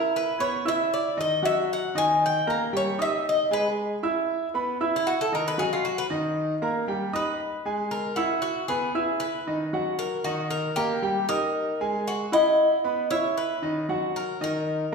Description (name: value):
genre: latin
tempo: 116 BPM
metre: 4/4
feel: straight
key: unclear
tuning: A4 = 439 Hz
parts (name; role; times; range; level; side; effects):
- Cuban tres; melody; 0.0-14.9 s; E4 to G#5; -26 LUFS; left 2 dB; none
- warm concert grand piano; arpeggios; 0.0-14.9 s; D#3 to E6; -26 LUFS; right 1 dB; none
room: wet recital hall reverb, RT60 1.6 s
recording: recorded in a church or concert hall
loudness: -23 LUFS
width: side -4 dB against mid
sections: 0.0-7.4 A section; 7.4-14.9 B section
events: Cuban tres solo 0.0-7.4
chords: 0.1 Bmadd11; 1.2 D#madd11; 2.2 D#; 3.3 G#5; 4.3 Bsus4; 5.3 D#madd9; 6.4 D#; 7.4 G#m; 8.4 Eadd9/B; 9.5 B; 10.5 D#; 11.5 G#m9; 12.6 Badd11; 13.6 D#m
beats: 0.14 0.66 | 1.18 1.70 2.22 2.73 | 3.25 3.77 4.29 4.81 | 5.32 5.84 6.36 6.88 | 7.40 7.91 8.43 8.95 | 9.47 9.99 10.51 11.03 | 11.55 12.07 12.59 13.11 | 13.63 14.15 14.67